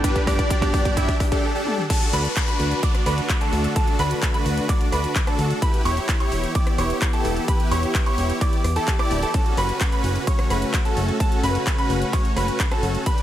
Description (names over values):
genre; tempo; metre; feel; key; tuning
EDM, festival progressive house; 129 BPM; 4/4; straight; D major; A4 = 436 Hz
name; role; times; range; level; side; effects
clean electric guitar; accompaniment; 0.0-1.1 s; G2 to G4; -28 LUFS; right 3 dB; sidechain pumping, digital delay
lush unison pad; sustained chords; 0.0-13.2 s; C#3 to B4; -30 LUFS; equal; chorus, sidechain pumping
supersaw chords; riff; 0.0-13.2 s; C#4 to E5; -26 LUFS; equal; sidechain pumping, digital delay
big-room dance drum kit; drums; 0.0-13.2 s; crash cymbal, handclaps, hi-hat, ride cymbal, rim click, toms; -30 LUFS; left 1 dB; overdrive
electronic kick drum; drums; 0.0-13.2 s; none; -22 LUFS; equal; overdrive
riser, swell and downlifter; sound effects; 0.0-5.6 s; none; -33 LUFS; left 1 dB; none
clear concert grand piano; arpeggios; 1.9-13.2 s; A5 to D6; -28 LUFS; right 2 dB; sidechain pumping, digital delay
fat analog bass; bass; 2.1-13.0 s; D1 to D2; -24 LUFS; equal; tube saturation, sidechain pumping
room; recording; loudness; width
light reverb, digital ambience; none; -19 LUFS; side -12 dB against mid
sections
0.0-1.9 A section; 1.9-13.2 B section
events
build-up 0.0-1.9; drum fill 0.0-1.4, 1.7; swell 1.0-1.9; break 1.4-1.9; drop 1.9-13.2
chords
0.0 G; 1.9 D; 5.6 Em; 9.3 F#m